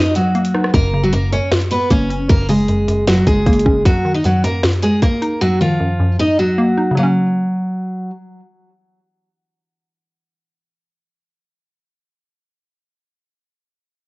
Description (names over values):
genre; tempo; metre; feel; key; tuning
hip hop, trap; 154 BPM; 4/4; half-time; F# major; A4 = 441 Hz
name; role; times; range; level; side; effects
picked steel-string acoustic guitar; melody; 0.0-8.1 s; E#3 to D#5; -16 LUFS; equal; none
hollow square pluck; accompaniment; 0.0-11.6 s; F#2 to D#4; -18 LUFS; equal; chorus, cassette tape
trap drum kit; drums; 0.1-5.3 s; hi-hat, kick drum, rim click, snare drum; -17 LUFS; equal; cassette tape
hard-hitting 808-style bass; bass; 0.7-3.8 s; F#1; -21 LUFS; equal; none
room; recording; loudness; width
moderate studio reverb, RT60 0.7 s; home recording on cassette, nothing above 7.8 kHz; -13 LUFS; side -24 dB against mid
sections
0.0-7.0 A section; 7.0-10.1 B section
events
break 0.0-0.7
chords
0.0 D#m/F#; 0.7 F#; 3.9 D#m/F#; 7.0 F#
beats
0.35 | 0.74 1.13 1.52 1.91 | 2.30 2.69 3.08 3.46 | 3.85 4.24 4.63 5.02 | 5.41 5.80 6.19 6.58 | 6.97 7.36 7.75 8.14 | 8.53 8.92 9.31 9.70